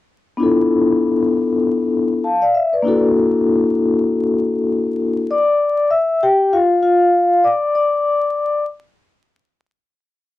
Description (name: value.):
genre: hip hop.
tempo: 98 BPM.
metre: 4/4.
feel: swing 59% on 16ths.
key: unclear.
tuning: A4 = 441 Hz.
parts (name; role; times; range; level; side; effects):
vibraphone with soft mallets; solo; 0.4-8.6 s; A#3 to E6; -14 LUFS; left 2 dB; cassette tape.
room: wet booth ambience, RT60 0.2 s.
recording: home recording on cassette, vinyl crackle.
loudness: -14 LUFS.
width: side -15 dB against mid.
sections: 0.4-5.3 A section; 5.3-10.4 B section.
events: vibraphone solo 5.3-10.4.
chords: 0.4 Dm69; 2.9 F#7alt; 5.3 Dmadd9; 7.8 N.C..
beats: | 0.40 1.01 1.63 2.24 | 2.85 3.46 4.08 4.69 | 5.30 5.91 6.53 7.14 | 7.75 8.36.